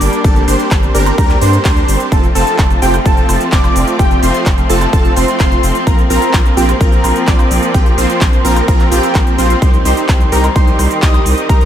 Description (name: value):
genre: EDM, festival progressive house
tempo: 128 BPM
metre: 4/4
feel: straight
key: Bb major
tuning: A4 = 440 Hz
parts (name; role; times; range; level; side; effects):
- bright studio string section; sustained chords; 0.0-11.7 s; Eb3 to D4; -19 LUFS; equal; sidechain pumping
- plucky unison lead; arpeggios; 0.0-11.7 s; G5 to Eb6; -19 LUFS; equal; wide subtle chorus, sidechain pumping, analog delay
- supersaw stab; riff; 0.0-11.7 s; C4 to Eb5; -16 LUFS; right 1 dB; sidechain pumping, analog delay
- saturated sub bass; bass; 0.0-11.7 s; F1 to G2; -16 LUFS; equal; sidechain pumping
- big-room dance drum kit; drums; 0.0-11.7 s; handclaps, hi-hat, shaker, woodblock; -22 LUFS; equal; overdrive
- electronic kick drum; drums; 0.2-11.6 s; none; -12 LUFS; equal; overdrive
room: light reverb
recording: none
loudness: -9 LUFS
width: side -10 dB against mid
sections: 0.0-11.7 A section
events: none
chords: 0.0 Gm; 2.1 F; 5.9 Bbsus2; 9.6 Cm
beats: | 0.24 0.71 1.18 1.65 | 2.12 2.59 3.06 3.52 | 3.99 4.46 4.93 5.40 | 5.87 6.34 6.81 7.28 | 7.74 8.21 8.68 9.15 | 9.62 10.09 10.56 11.03 | 11.49